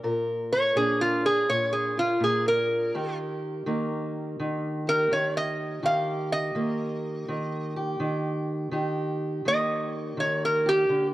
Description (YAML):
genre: acoustic country blues, solo or duo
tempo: 83 BPM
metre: 4/4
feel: swing 66% on 8ths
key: unclear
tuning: A4 = 436 Hz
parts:
  - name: fingerpicked steel-string acoustic guitar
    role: accompaniment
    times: 0.0-11.1 s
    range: Bb2 to Bb4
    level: -29 LUFS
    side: equal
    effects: cassette tape
  - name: metal-body resonator slide guitar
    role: melody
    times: 0.5-11.1 s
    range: F4 to F5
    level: -24 LUFS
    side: equal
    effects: cassette tape
room: light reverb, studio ambience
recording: home recording on cassette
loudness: -24 LUFS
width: side -16 dB against mid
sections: 0.0-11.1 A section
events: resonator guitar played with a steel bar solo 0.0-11.1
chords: 0.0 Bb; 2.9 Eb